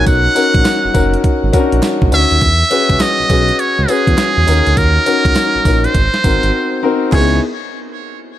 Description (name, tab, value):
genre	R&B, new jack swing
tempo	102 BPM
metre	4/4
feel	swing 64% on 16ths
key	C# dorian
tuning	A4 = 439 Hz
part	trumpet with metal mute	melody	0.0-7.4 s	G#4 to F#5	-16 LUFS	right 2 dB	ping-pong delay
part	warm concert grand piano	accompaniment	0.0-7.4 s	B3 to C#5	-16 LUFS	left 3 dB	none
part	smooth synth bass	bass	0.0-7.4 s	F#1 to E2	-15 LUFS	right 1 dB	none
part	crisp 8-bit digital drum machine	drums	0.1-7.3 s	crash cymbal, hi-hat, kick drum, snare drum, tambourine	-16 LUFS	right 1 dB	gated reverb
part	group handclap	percussion	0.7-7.4 s	none	-34 LUFS	right 8 dB	none
room	light reverb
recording	none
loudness	-10 LUFS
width	side -12 dB against mid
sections	0.0-7.1 A section; 7.1-8.4 B section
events	break 6.5-7.1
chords	0.0 Bmaj7 (rootless); 2.4 E6; 4.5 D#m7; 5.9 G#7; 7.1 C#m7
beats	| 0.07 0.65 1.24 1.83 | 2.42 3.01 3.60 4.18 | 4.77 5.36 5.95 6.54 | 7.12